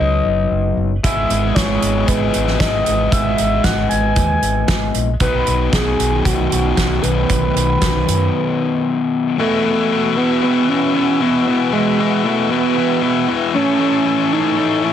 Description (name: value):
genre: indie rock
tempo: 115 BPM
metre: 4/4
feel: straight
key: E major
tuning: A4 = 443 Hz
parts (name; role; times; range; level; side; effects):
- expressive synth lead; melody; 0.0-14.9 s; G#3 to G#5; -18 LUFS; right 2 dB; chorus, slapback echo
- crunchy overdriven guitar; riff; 0.0-9.4 s; G#2 to F#4; -25 LUFS; right 8 dB; lush chorus, slapback echo
- fuzz guitar; riff; 0.0-14.9 s; E2 to B4; -19 LUFS; left 8 dB; distortion
- overdriven fingered electric bass; bass; 0.0-8.3 s; F#1 to F#2; -20 LUFS; right 1 dB; none
- loose indie drum kit; drums; 1.0-8.2 s; hi-hat, kick drum, snare drum; -20 LUFS; right 1 dB; none
- tonewheel organ; sustained chords; 9.4-14.9 s; B4 to E6; -26 LUFS; right 1 dB; slow rotary speaker, overdrive
room: light reverb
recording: heavily compressed radio sound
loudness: -14 LUFS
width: side -10 dB against mid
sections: 0.0-9.4 A section; 9.4-14.9 B section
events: break 8.3-9.4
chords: 0.0 B/F#; 1.0 E/G#; 5.2 B; 9.4 Esus2; 13.5 Amaj7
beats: 0.00 0.52 | 1.04 1.56 2.08 2.61 | 3.13 3.65 4.17 4.69 | 5.21 5.74 6.26 6.78 | 7.30 7.82 8.35 8.87 | 9.39 9.91 10.43 10.95 | 11.46 11.98 12.50 13.02 | 13.54 14.05 14.57